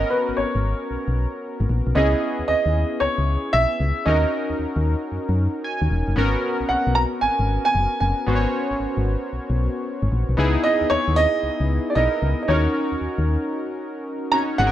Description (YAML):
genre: R&B, new jack swing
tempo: 114 BPM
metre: 4/4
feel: swing 65% on 16ths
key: G# minor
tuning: A4 = 439 Hz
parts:
  - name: warm baby grand piano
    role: melody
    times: 0.0-14.7 s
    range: B4 to A#5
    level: -22 LUFS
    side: right 2 dB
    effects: none
  - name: warm analog keys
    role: accompaniment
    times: 0.0-14.7 s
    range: B3 to G#5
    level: -25 LUFS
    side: left 1 dB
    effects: chorus
  - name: solid FM bass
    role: bass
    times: 0.0-14.7 s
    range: E1 to F#2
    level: -21 LUFS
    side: equal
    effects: none
room: moderate studio reverb, RT60 0.7 s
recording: none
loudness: -19 LUFS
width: side -12 dB against mid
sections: 0.0-14.6 A section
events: synth keys fill 5.4-6.2; break 13.5-14.6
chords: 0.0 G#m11; 2.0 C#m7; 4.1 D#m7; 6.2 G#m11; 10.4 C#m7; 12.5 D#m7